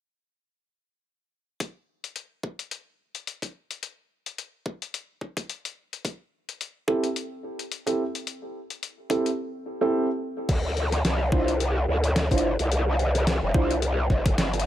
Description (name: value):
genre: glitch hop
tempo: 108 BPM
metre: 4/4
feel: swing 56% on 16ths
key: D minor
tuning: A4 = 441 Hz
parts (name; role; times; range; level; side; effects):
- boom bap sampler-style drum kit; drums; 1.6-14.7 s; crash cymbal, hi-hat, snare drum; -30 LUFS; left 2 dB; none
- electronic kick drum; drums; 1.6-14.4 s; none; -26 LUFS; equal; overdrive, high-pass filter on kick, high-pass filter on room
- dark baby grand piano; stabs; 6.9-13.7 s; C4 to C5; -27 LUFS; right 2 dB; vintage 12-bit sampler grit, sidechain pumping, digital delay
- growl bass; bass; 10.5-14.6 s; F1 to D2; -24 LUFS; equal; chorus, overdrive
room: light reverb, digital ambience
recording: none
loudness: -24 LUFS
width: side -12 dB against mid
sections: 1.6-10.5 A section; 10.5-14.7 B section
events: none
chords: 1.6 N.C.; 6.0 C6; 10.5 Dm7